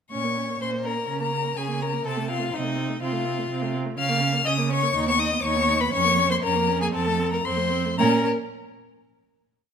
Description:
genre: quick classical-period movement for string quartet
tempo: 122 BPM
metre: 4/4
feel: uneven beats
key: Bb minor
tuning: A4 = 440 Hz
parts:
  - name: rich violin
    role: melody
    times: 0.1-8.3 s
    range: Eb5 to F6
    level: -26 LUFS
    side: left 7 dB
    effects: none
  - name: warm violin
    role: second line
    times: 0.1-8.3 s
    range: Eb4 to F5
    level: -28 LUFS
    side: left 2 dB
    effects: none
  - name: warm viola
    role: accompaniment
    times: 0.1-8.3 s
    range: A3 to D#4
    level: -30 LUFS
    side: right 4 dB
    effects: none
  - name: warm cello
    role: bass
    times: 0.1-8.3 s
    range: D#2 to Db3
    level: -27 LUFS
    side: right 5 dB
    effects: none
room: moderate recital hall reverb, RT60 1.5 s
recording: none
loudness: -21 LUFS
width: side -7 dB against mid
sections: 0.1-8.0 A section; 8.0-9.7 final chord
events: slowing down 3.0-8.0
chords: 0.1 Bbm; 1.1 Bbm/Db; 2.1 F7/C; 4.0 Bbm/Db; 5.0 B/D#; 5.9 Bbm/F; 6.9 F; 8.0 Bbm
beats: | 0.13 0.61 1.10 1.58 | 2.07 2.55 3.03 3.51 | 3.99 4.47 4.96 5.45 | 5.94 6.43 6.94 7.45 | 7.98

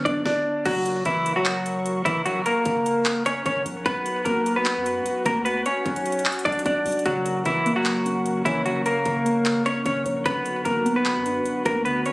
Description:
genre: hip hop, trap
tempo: 150 BPM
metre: 4/4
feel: half-time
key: unclear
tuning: A4 = 441 Hz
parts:
  - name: semi-hollow electric guitar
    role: melody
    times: 0.0-12.1 s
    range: E3 to D5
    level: -22 LUFS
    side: equal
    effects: ping-pong delay
  - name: muted felt-like synth keys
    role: accompaniment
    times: 0.0-0.7, 7.1-12.1 s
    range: C#3 to C#5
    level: -27 LUFS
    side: equal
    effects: chorus
  - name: long sustained 808-style bass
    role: bass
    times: 0.0-12.0 s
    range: F#1 to F#2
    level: -36 LUFS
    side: equal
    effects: none
  - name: trap drum kit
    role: drums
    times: 0.1-12.1 s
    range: crash cymbal, handclaps, hi-hat, kick drum, snare drum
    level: -29 LUFS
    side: equal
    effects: none
  - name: warm analog pad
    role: sustained chords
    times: 0.7-12.1 s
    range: F#4 to C#6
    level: -34 LUFS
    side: equal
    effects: chorus
room: digital ambience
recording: recorded on a phone in the room, studio reverb, compression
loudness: -21 LUFS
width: side -22 dB against mid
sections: 0.7-12.1 A section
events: none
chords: 0.0 Bm; 0.7 F#; 3.9 Bm; 7.1 F#; 10.3 Bm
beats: 0.26 | 0.66 1.06 1.46 1.86 | 2.26 2.66 3.06 3.46 | 3.86 4.26 4.66 5.06 | 5.46 5.86 6.26 6.66 | 7.06 7.46 7.86 8.26 | 8.66 9.06 9.46 9.86 | 10.26 10.66 11.06 11.46 | 11.86

